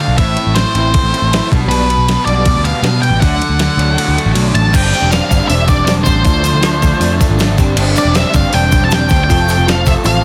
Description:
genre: indie rock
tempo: 158 BPM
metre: 4/4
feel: straight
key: G mixolydian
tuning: A4 = 440 Hz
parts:
  - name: octave-fuzz lead guitar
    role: melody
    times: 0.0-10.2 s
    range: B4 to A5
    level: -19 LUFS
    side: equal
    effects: distortion, slapback echo, plate reverb
  - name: crunchy overdriven guitar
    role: riff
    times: 0.0-10.2 s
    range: E3 to A4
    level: -23 LUFS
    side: equal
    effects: ensemble chorus, slapback echo
  - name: fuzz guitar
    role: riff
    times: 0.0-10.2 s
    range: F2 to F4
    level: -22 LUFS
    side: equal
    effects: distortion
  - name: picked electric bass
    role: bass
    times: 0.0-10.2 s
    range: E1 to B2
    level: -17 LUFS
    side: equal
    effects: none
  - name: clean 12-bit digital drum machine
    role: drums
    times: 0.2-10.1 s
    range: crash cymbal, hi-hat, kick drum, ride cymbal, snare drum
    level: -18 LUFS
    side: equal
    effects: overdrive
  - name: tube shaker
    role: percussion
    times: 4.7-10.1 s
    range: none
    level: -34 LUFS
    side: equal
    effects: none
room: light reverb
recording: dense, heavily limited modern master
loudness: -12 LUFS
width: mono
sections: 0.0-4.7 A section; 4.7-10.2 B section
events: kick and snare drop out 4.0-4.7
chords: 0.2 Am; 1.5 G/B; 3.2 D; 4.7 Gsus4; 6.3 Dm7; 7.6 Gsus4; 9.3 F

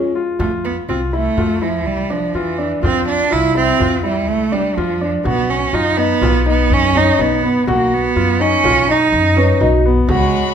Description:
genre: contemporary instrumental, chamber music in an uneven meter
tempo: 124 BPM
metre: 5/4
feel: straight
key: unclear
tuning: A4 = 440 Hz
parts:
  - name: clear cello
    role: melody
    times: 0.0-10.5 s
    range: E3 to E4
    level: -17 LUFS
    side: right 4 dB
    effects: none
  - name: vibraphone with soft mallets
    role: second line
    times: 0.0-0.4, 9.4-10.1 s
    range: F4 to B4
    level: -20 LUFS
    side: right 3 dB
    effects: none
  - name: warm concert grand piano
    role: arpeggios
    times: 0.0-10.5 s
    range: B3 to F#4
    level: -19 LUFS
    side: left 2 dB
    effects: none
  - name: upright bass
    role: bass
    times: 0.4-10.3 s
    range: B1 to F#2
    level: -20 LUFS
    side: equal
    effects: none
  - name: frame drum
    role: percussion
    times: 0.4-10.3 s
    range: none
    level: -27 LUFS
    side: equal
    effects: none
  - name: bright chamber string section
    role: sustained chords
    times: 10.1-10.5 s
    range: Gb4 to Cb6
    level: -21 LUFS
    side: left 6 dB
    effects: none
room: moderate scoring stage reverb, RT60 1.5 s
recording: minimal, uncompressed stereo recording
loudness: -13 LUFS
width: side -8 dB against mid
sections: 0.4-10.1 A section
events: break 0.0-0.4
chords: 0.4 F5; 5.3 B

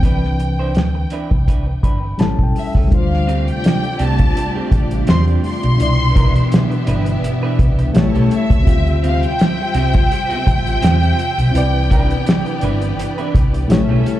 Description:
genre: lush 1970s-style soul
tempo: 84 BPM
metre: 4/4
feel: swing 54% on 16ths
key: C major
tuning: A4 = 440 Hz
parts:
  - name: rich studio violin section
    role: melody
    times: 0.0-13.7 s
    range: E5 to C6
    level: -23 LUFS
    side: equal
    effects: slapback echo
  - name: reed electric piano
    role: accompaniment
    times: 0.0-14.2 s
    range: B2 to B5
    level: -22 LUFS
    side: left 3 dB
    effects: overdrive, fast tremolo, slapback echo
  - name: electric guitar through a small old amp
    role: riff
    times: 0.0-14.1 s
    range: A3 to C5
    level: -28 LUFS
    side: right 6 dB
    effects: spring reverb, slapback echo
  - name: hollow-body short-scale fingered electric bass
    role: bass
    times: 0.0-14.0 s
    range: G1 to E2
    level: -16 LUFS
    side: equal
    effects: none
  - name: cloth-damped thuddy drum kit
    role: drums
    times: 0.0-14.2 s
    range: hi-hat, kick drum, snare drum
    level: -16 LUFS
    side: equal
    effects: none
  - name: clear studio string section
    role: second line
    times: 2.9-14.2 s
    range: A3 to A5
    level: -29 LUFS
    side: left 1 dB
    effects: slapback echo, tape echo
  - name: soft string machine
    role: sustained chords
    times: 2.9-14.2 s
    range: B2 to E5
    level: -23 LUFS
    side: equal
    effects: ensemble chorus
room: small room ambience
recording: live gig heard through the venue's PA, club reverb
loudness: -13 LUFS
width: side -13 dB against mid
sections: 0.0-2.9 A section; 2.9-14.2 B section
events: reed electric piano fill 1.5-2.9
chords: 0.0 Cmaj9; 2.2 A7; 2.9 Dm11; 5.8 Cmaj9; 8.0 A7; 8.7 Dm11; 11.5 Cmaj9

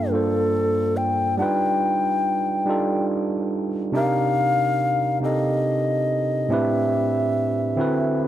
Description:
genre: R&B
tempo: 47 BPM (dotted quarters)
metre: 6/8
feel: straight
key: unclear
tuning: A4 = 440 Hz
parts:
  - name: breathy round clay ocarina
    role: melody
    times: 0.0-8.2 s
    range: A4 to G5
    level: -23 LUFS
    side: left 2 dB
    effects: tape echo
  - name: overdriven tine electric piano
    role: accompaniment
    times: 0.0-8.3 s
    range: G2 to C5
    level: -22 LUFS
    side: right 2 dB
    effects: none
room: light reverb, small room ambience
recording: none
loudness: -20 LUFS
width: side -12 dB against mid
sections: 0.0-8.3 A section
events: none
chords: 0.0 Gm9; 1.4 G7b13; 3.9 Cm7; 6.5 Am11; 7.8 D13

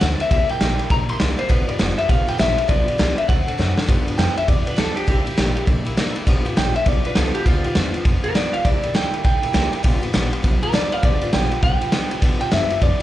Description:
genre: rockabilly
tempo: 201 BPM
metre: 4/4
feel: swing 62% on 8ths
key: G mixolydian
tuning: A4 = 440 Hz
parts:
  - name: picked swing-style acoustic guitar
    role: accompaniment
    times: 0.0-13.0 s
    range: G2 to A4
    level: -28 LUFS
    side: left 3 dB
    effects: slapback echo
  - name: upright bass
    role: bass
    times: 0.0-13.0 s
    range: F1 to G2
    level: -24 LUFS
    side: equal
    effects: none
  - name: raw garage drum kit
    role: drums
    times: 0.0-13.0 s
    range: kick drum, ride cymbal, snare drum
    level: -19 LUFS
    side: equal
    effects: none
  - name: electric guitar through a small old amp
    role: melody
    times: 0.2-13.0 s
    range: F4 to C6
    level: -23 LUFS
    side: equal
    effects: slapback echo, analog delay
room: little or no reverb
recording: live gig heard through the venue's PA, club reverb, nothing above 10.3 kHz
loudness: -17 LUFS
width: side -14 dB against mid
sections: 0.0-3.9 A section; 3.9-13.0 B section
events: drum fill 3.6; clean electric guitar solo 3.9-13.0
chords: 0.3 C7; 1.5 G7; 3.3 D7; 3.9 G7; 5.1 C7; 6.3 G7; 8.7 C7; 9.8 G7

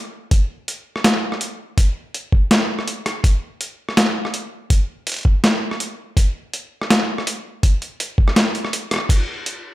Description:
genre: drum and bass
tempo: 164 BPM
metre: 4/4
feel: half-time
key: none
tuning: none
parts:
  - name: boom bap sampler-style drum kit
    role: drums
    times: 0.3-9.5 s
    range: crash cymbal, hi-hat, rim click, snare drum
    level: -19 LUFS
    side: equal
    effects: none
  - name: electronic kick drum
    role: drums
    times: 0.3-9.2 s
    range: none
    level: -14 LUFS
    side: equal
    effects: none
room: light reverb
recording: none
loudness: -18 LUFS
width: side -16 dB against mid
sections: 0.0-9.7 A section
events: break 8.7-9.1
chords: none

